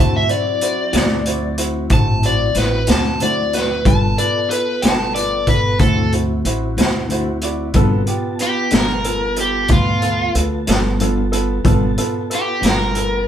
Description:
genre	slow blues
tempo	62 BPM (dotted quarters)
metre	12/8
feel	straight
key	G mixolydian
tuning	A4 = 440 Hz
part	raw garage guitar	melody	0.0-13.3 s	F4 to A5	-19 LUFS	left 1 dB	overdrive
part	clean electric guitar	accompaniment	0.0-12.8 s	G2 to B4	-24 LUFS	left 4 dB	tremolo
part	clear grand piano	accompaniment	0.0-13.2 s	B3 to D5	-24 LUFS	right 2 dB	none
part	tonewheel organ	sustained chords	0.0-13.3 s	F#3 to A5	-28 LUFS	equal	slow rotary speaker, chorus vibrato
part	upright bass	bass	0.0-13.3 s	G1 to D2	-21 LUFS	equal	none
part	raw garage drum kit	drums	0.3-13.1 s	hi-hat, kick drum, snare drum	-18 LUFS	equal	none
room	moderate studio reverb, RT60 0.8 s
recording	band playing live in one room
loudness	-15 LUFS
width	side -10 dB against mid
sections	0.0-7.8 A section; 7.8-13.3 A section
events	none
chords	0.0 D7; 3.9 G7; 5.8 D7; 7.8 G7

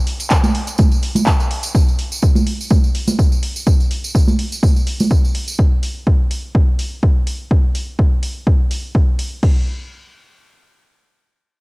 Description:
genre	house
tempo	125 BPM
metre	4/4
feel	swing 54% on 16ths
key	none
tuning	none
part	punchy analog drum machine	drums	0.1-9.5 s	crash cymbal, handclaps, hi-hat	-26 LUFS	equal	cassette tape
part	tambourine and congas	percussion	0.2-5.6 s	none	-21 LUFS	right 2 dB	none
part	electronic kick drum	drums	0.3-9.5 s	none	-14 LUFS	equal	cassette tape
room	studio reverb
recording	home recording on cassette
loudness	-14 LUFS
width	side -26 dB against mid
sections	0.0-9.4 A section; 9.4-11.6 B section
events	none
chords	none

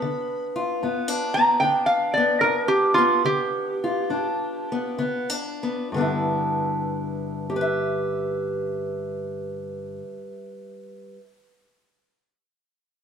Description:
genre	acoustic country blues, solo or duo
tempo	64-77 BPM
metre	4/4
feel	swing 68% on 8ths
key	G mixolydian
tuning	A4 = 440 Hz
part	lap resonator guitar	melody	0.0-4.9 s	F4 to B5	-19 LUFS	right 1 dB	none
part	fingerpicked steel-string acoustic guitar	accompaniment	0.0-11.2 s	G2 to E5	-26 LUFS	left 1 dB	none
room	wet stone room reverb, RT60 1.4 s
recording	band playing live in one room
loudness	-22 LUFS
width	side -7 dB against mid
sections	0.0-5.9 A section; 5.9-9.7 B section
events	slowing down 0.0-5.9; resonator guitar played with a steel bar solo 0.0-5.9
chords	0.0 G7; 5.9 G6

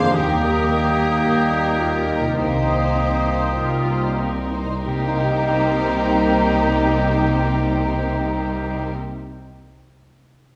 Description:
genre	cinematic, emotional film score for orchestra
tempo	46-58 BPM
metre	4/4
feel	rubato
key	C minor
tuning	A4 = 440 Hz
part	warm symphonic violin section	melody	0.0-8.9 s	Bb4 to F5	-32 LUFS	equal	none
part	bright clarinet	second line	0.0-8.9 s	Bb3 to Eb4	-29 LUFS	equal	none
part	clear oboe	second line	0.0-8.9 s	G4 to C5	-30 LUFS	equal	none
part	silver concert flute	second line	0.0-8.9 s	Bb5 to Eb6	-30 LUFS	equal	none
part	warm symphonic violin section	second line	0.0-8.9 s	Bb3 to C5	-30 LUFS	equal	none
part	rich symphonic viola section	accompaniment	0.0-8.9 s	G3 to Ab4	-29 LUFS	equal	none
part	mellow French horn section	sustained chords	0.0-8.9 s	G3 to Eb4	-29 LUFS	equal	none
part	concert harp	arpeggios	0.0-9.3 s	C3 to Eb5	-30 LUFS	equal	none
part	rich symphonic cello section	bass	0.0-8.9 s	C2 to C3	-29 LUFS	equal	none
part	rich symphonic double bass section	bass	0.0-8.9 s	C2 to Eb2	-29 LUFS	equal	none
room	wet scoring stage reverb, RT60 1.6 s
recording	heard from further back in the room, studio ambience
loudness	-20 LUFS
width	mono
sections	0.0-4.9 A section; 4.9-10.0 B section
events	slowing down 0.0-4.9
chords	0.1 Eb; 2.4 Cm7

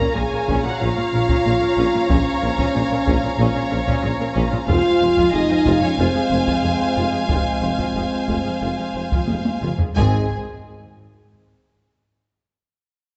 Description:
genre	cinematic, epic orchestral film score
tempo	92 BPM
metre	4/4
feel	straight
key	Ab major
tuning	A4 = 440 Hz
part	rich symphonic violin section	melody	0.0-10.3 s	C5 to Bb5	-32 LUFS	equal	none
part	rich studio violin section	second line	0.0-10.3 s	Ab4 to Bb5	-28 LUFS	equal	none
part	dark symphonic viola section	accompaniment	0.0-10.3 s	C4 to Db5	-31 LUFS	equal	none
part	bright trombone section	sustained chords	0.0-10.3 s	Eb3 to Db4	-33 LUFS	equal	none
part	mellow French horn section	sustained chords	0.0-10.3 s	Ab3 to Bb4	-24 LUFS	equal	none
part	rich symphonic cello section	bass	0.0-10.3 s	F2 to Bb2	-30 LUFS	equal	none
part	taiko ensemble	drums	0.0-11.3 s	none	-27 LUFS	equal	none
part	clear symphonic double bass section	bass	0.2-10.3 s	F1 to Bb1	-29 LUFS	equal	none
part	mellow tuba	bass	0.2-10.3 s	F1 to Bb1	-30 LUFS	equal	none
room	wet scoring stage reverb, RT60 1.9 s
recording	nothing above 8.0 kHz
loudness	-19 LUFS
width	mono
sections	0.0-10.0 A section; 10.0-12.7 B section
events	drum fill 9.3-10.0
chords	0.0 Bbm; 4.7 Fm; 10.0 Ab

